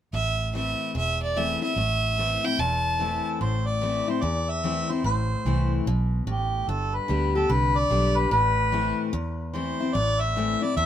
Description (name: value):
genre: country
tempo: 147 BPM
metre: 4/4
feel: swing 65% on 8ths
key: A minor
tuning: A4 = 436 Hz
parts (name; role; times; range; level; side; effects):
- clear fiddle; melody; 0.1-3.3 s; D5 to A5; -26 LUFS; right 2 dB; none
- picked steel-string acoustic guitar; accompaniment; 0.1-10.9 s; E2 to G4; -29 LUFS; left 5 dB; none
- vintage muted fingered electric bass; bass; 0.1-10.9 s; E1 to E2; -27 LUFS; right 1 dB; none
- mellow harmonica; second line; 3.0-10.9 s; G4 to E5; -26 LUFS; equal; none
room: little or no reverb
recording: minimal, uncompressed stereo recording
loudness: -22 LUFS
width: side -10 dB against mid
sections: 0.1-3.4 A section; 3.4-10.9 B section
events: harmonica solo 3.4-10.9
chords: 0.1 Am; 6.7 G; 8.3 Am